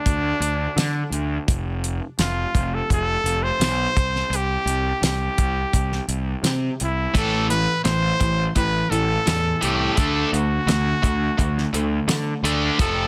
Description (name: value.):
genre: classic rock.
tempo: 85 BPM.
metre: 4/4.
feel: straight.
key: unclear.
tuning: A4 = 440 Hz.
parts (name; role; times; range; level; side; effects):
bright trumpet; melody; 0.0-13.1 s; D4 to C5; -26 LUFS; equal; digital delay.
fuzz picked electric bass; bass; 0.1-13.1 s; F1 to D3; -27 LUFS; equal; overdrive.
damped 70s drum kit; drums; 0.1-13.0 s; hi-hat, kick drum, snare drum, tambourine; -25 LUFS; equal; none.
biting overdriven guitar; riff; 7.1-13.1 s; F2 to D4; -28 LUFS; equal; none.
overdriven electric guitar; riff; 7.1-13.1 s; F2 to D4; -28 LUFS; equal; none.
room: small room ambience.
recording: none.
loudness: -22 LUFS.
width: mono.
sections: 0.0-13.1 A section.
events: none.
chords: 0.0 N.C.; 1.5 F; 4.0 C5; 7.1 Am; 10.0 D.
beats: 0.06 0.77 | 1.47 2.18 2.89 3.60 | 4.31 5.01 5.72 6.43 | 7.14 7.85 8.55 9.26 | 9.97 10.67 11.38 12.09 | 12.79.